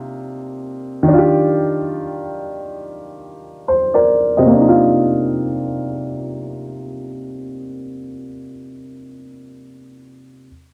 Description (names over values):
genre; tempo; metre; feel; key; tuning
hip hop; free time; none; none; C minor; A4 = 440 Hz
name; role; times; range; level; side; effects
dark upright piano; accompaniment; 0.0-10.5 s; C3 to Eb5; -19 LUFS; equal; cassette tape, low-pass filter
room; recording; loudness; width
moderate small room reverb, RT60 0.5 s; none; -16 LUFS; mono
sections
0.0-4.5 A section; 4.5-8.0 B section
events
filter sweep on upright piano 0.0-4.5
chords
0.0 Cm11; 1.1 Ebmaj9; 4.5 Cm11